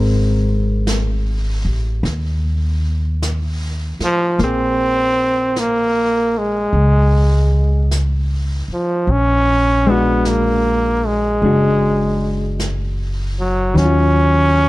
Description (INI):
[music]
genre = jazz ballad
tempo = 51 BPM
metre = 4/4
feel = swing 67% on 8ths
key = unclear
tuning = A4 = 439 Hz
[part]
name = hollow-body jazz guitar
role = accompaniment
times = 0.0-14.7 s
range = Eb3 to C5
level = -19 LUFS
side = left 2 dB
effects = none
[part]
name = upright bass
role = bass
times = 0.0-14.7 s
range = F#1 to Eb2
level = -18 LUFS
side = equal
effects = none
[part]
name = jazz brush drum kit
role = drums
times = 0.9-14.7 s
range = brushed snare drum, hi-hat, snare drum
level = -30 LUFS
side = right 1 dB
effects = none
[part]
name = brilliant trombone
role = melody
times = 4.0-14.7 s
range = F3 to Db4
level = -16 LUFS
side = equal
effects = none
[sound]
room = little or no reverb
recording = dark, warm production, lossy compression artefacts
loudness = -14 LUFS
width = side -18 dB against mid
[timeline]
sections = 0.0-4.4 A section; 4.4-14.7 B section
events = trombone solo 0.0-4.4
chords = 0.0 Abadd9; 4.4 Bbm9; 9.1 Bbaug7; 13.8 Ebm9